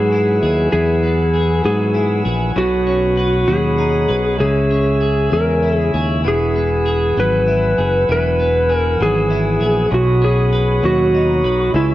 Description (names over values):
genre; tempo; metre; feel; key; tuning
pop; 66 BPM (dotted quarters); 6/8; straight; B major; A4 = 440 Hz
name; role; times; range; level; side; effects
electric slide guitar; melody; 0.0-11.9 s; E4 to B4; -17 LUFS; equal; cassette tape
twelve-string electric guitar; accompaniment; 0.0-11.9 s; B2 to B4; -22 LUFS; left 1 dB; double-tracked left and right, cassette tape
tonewheel organ; sustained chords; 0.0-11.9 s; B4 to E6; -24 LUFS; left 1 dB; stopped rotary speaker, cassette tape
fingered electric bass; bass; 0.0-11.9 s; E1 to G#2; -18 LUFS; equal; none
room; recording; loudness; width
light reverb, digital ambience; home recording on cassette; -14 LUFS; side -14 dB against mid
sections
0.0-11.9 A section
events
none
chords
0.0 Eadd9; 2.6 Badd9; 4.4 C#m; 6.2 Eadd9; 9.9 Badd9